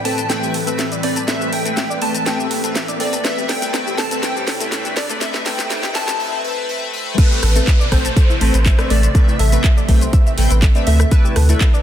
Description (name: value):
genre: progressive house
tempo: 122 BPM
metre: 4/4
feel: straight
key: A minor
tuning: A4 = 440 Hz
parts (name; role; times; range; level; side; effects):
- plucky unison lead; melody; 0.0-11.8 s; B4 to A5; -25 LUFS; equal; ensemble chorus, sidechain pumping, ping-pong delay
- evolving wavetable pad; sustained chords; 0.0-11.8 s; A2 to D5; -28 LUFS; equal; ensemble chorus, built-in reverb, sidechain pumping
- riser and downlifter; sound effects; 0.0-11.1 s; none; -29 LUFS; right 1 dB; none
- twinkling granular texture; texture; 0.0-6.2 s; B5; -38 LUFS; right 4 dB; none
- soft round pluck; arpeggios; 0.1-11.8 s; A3 to A6; -27 LUFS; left 1 dB; analog chorus, cassette tape, sidechain pumping, ping-pong delay
- chorused polysynth; stabs; 0.1-11.6 s; A3 to G5; -24 LUFS; left 2 dB; phaser, sidechain pumping, ping-pong delay
- house drum kit; drums; 0.1-11.8 s; crash cymbal, handclaps, hi-hat, rim click, shaker, snare drum; -23 LUFS; equal; sidechain pumping on hats, sidechain pumping on perc, sidechain pumping on cymbals
- electronic kick drum; drums; 7.2-11.7 s; none; -13 LUFS; equal; none
- saturated sub bass; bass; 7.4-11.5 s; A1 to D2; -14 LUFS; equal; sidechain pumping
room: light reverb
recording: dense, heavily limited modern master, high-pass filter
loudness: -14 LUFS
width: side -11 dB against mid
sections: 0.0-7.2 A section; 7.2-11.8 B section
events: build-up 0.0-7.2; drum fill 0.0-6.2; riser 0.0-6.2; drop 7.2-11.8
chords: 0.0 Amadd9; 11.1 Dsus2